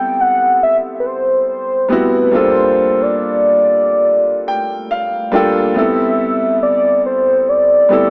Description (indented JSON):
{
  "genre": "R&B",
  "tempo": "70 BPM",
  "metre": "4/4",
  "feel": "swing 58% on 16ths",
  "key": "unclear",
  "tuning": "A4 = 440 Hz",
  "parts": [
    { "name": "warm velvety synth lead", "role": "melody", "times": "0.0-8.1 s", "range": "B4 to G5", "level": "-15 LUFS", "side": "equal", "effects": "chorus" },
    { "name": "clear baby grand piano", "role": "accompaniment", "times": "0.0-8.1 s", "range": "G3 to G5", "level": "-20 LUFS", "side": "equal", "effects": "none" }
  ],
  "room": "moderate recital hall reverb, RT60 1.4 s",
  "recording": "small speaker sound",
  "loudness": "-14 LUFS",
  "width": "mono",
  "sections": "0.0-5.8 A section; 5.8-8.1 B section",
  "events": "grand piano fill 4.0-5.8",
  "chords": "0.0 Am7; 2.3 Gm7; 5.8 Am9",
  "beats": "0.62 1.48 | 2.33 3.19 4.05 4.91 | 5.76 6.62 7.48"
}